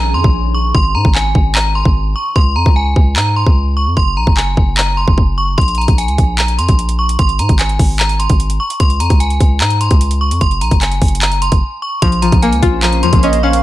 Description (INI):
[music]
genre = hip hop, trap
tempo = 149 BPM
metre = 4/4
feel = half-time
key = Bb minor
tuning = A4 = 440 Hz
[part]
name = metallic FM bell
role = melody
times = 0.0-13.6 s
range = Ab5 to Db6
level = -18 LUFS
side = equal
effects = chorus, low-pass filter
[part]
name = hard-hitting 808-style bass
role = bass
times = 0.0-13.6 s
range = Gb1 to Ab2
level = -15 LUFS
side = equal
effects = none
[part]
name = trap drum kit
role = drums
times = 0.2-13.6 s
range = handclaps, hi-hat, kick drum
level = -14 LUFS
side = equal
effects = vintage 12-bit sampler grit
[part]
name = string-like resonator pluck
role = accompaniment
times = 12.0-13.6 s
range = F3 to F4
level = -15 LUFS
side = left 3 dB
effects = chorus, low-pass filter
[part]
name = granular cloud pad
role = sustained chords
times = 12.5-13.6 s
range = Bb3 to C5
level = -24 LUFS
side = equal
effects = built-in reverb
[part]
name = breathy flute-like synth lead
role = second line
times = 13.2-13.6 s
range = Eb5 to F5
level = -16 LUFS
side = right 6 dB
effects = chorus
[sound]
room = digital ambience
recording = none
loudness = -11 LUFS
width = side -15 dB against mid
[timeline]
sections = 0.0-12.0 A section; 12.0-13.6 B section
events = break 0.0-5.6, 11.6-12.0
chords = 0.0 Bbmadd9; 0.7 Abadd9; 2.4 Db5; 4.0 Gb; 5.6 Bbsus2; 7.2 Abadd9; 8.8 Db5; 10.4 Gb; 12.0 Bbmadd9